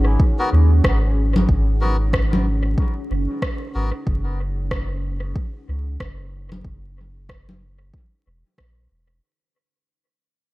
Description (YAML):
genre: ambient dub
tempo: 93 BPM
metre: 4/4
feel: swing 60% on 16ths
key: unclear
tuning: A4 = 444 Hz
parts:
  - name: deep dark ambient pad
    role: sustained chords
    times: 0.0-9.2 s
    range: C#4 to F#5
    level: -29 LUFS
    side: equal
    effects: chorus, built-in reverb
  - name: soft dub sub bass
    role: bass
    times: 0.0-9.2 s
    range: E1 to D#2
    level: -19 LUFS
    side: equal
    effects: none
  - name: electronic kick drum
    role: drums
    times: 0.2-8.7 s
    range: none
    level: -21 LUFS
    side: equal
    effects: overdrive
  - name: melodica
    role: stabs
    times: 0.4-3.9 s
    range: B3 to A#4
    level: -28 LUFS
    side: left 2 dB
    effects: dub echo
  - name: electronic rim click and congas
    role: drums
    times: 0.8-8.7 s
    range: none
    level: -26 LUFS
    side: left 1 dB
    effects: dub echo
room: little or no reverb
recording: vinyl crackle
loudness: -18 LUFS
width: side -19 dB against mid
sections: 0.0-9.2 A section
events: fade-out 0.0-9.2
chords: 0.0 G#7(no3); 4.1 F#5